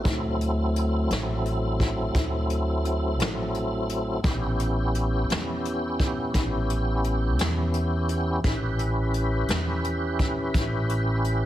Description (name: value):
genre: slow blues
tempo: 57 BPM (dotted quarters)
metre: 12/8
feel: straight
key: unclear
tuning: A4 = 440 Hz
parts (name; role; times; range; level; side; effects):
- tonewheel organ; sustained chords; 0.0-11.5 s; F#3 to B4; -28 LUFS; equal; slow rotary speaker, overdrive, chorus vibrato
- upright bass; bass; 0.1-11.5 s; A1 to E2; -27 LUFS; equal; none
- jazz brush drum kit; drums; 0.1-11.4 s; hi-hat, kick drum, snare drum; -28 LUFS; equal; none
room: light reverb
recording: heavily compressed radio sound, multiband compression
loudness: -23 LUFS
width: side -13 dB against mid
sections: 0.0-11.5 A section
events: none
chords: 0.0 D7; 4.2 A7